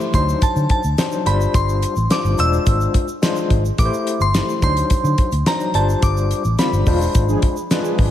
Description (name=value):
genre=early-eighties boogie funk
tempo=107 BPM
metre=4/4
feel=straight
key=unclear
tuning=A4 = 440 Hz
part: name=glassy synth bell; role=melody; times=0.0-7.7 s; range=A5 to E6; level=-23 LUFS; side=equal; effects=chorus, slapback echo
part: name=overdriven tine electric piano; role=accompaniment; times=0.0-8.1 s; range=F#3 to C5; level=-22 LUFS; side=left 4 dB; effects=fast tremolo, slapback echo
part: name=egg shaker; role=percussion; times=0.0-8.0 s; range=none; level=-38 LUFS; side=right 8 dB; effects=none
part: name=vintage muted fingered electric bass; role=bass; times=0.1-8.1 s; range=E1 to D3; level=-19 LUFS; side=equal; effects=none
part: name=damped 70s drum kit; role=drums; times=0.1-8.1 s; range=hi-hat, kick drum, snare drum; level=-19 LUFS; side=equal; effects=none
part: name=mellow synth brass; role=second line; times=6.6-8.1 s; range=D3 to G#4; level=-24 LUFS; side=right 2 dB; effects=chorus, slapback echo
room=light reverb, small room ambience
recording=none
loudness=-15 LUFS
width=side -11 dB against mid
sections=0.0-8.1 A section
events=band accent 6.0-8.1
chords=0.1 D7b9; 1.3 G7sus4; 2.4 E7b9b13; 3.8 Am7; 4.6 D7b9; 5.7 G7sus4; 6.9 E7b9b13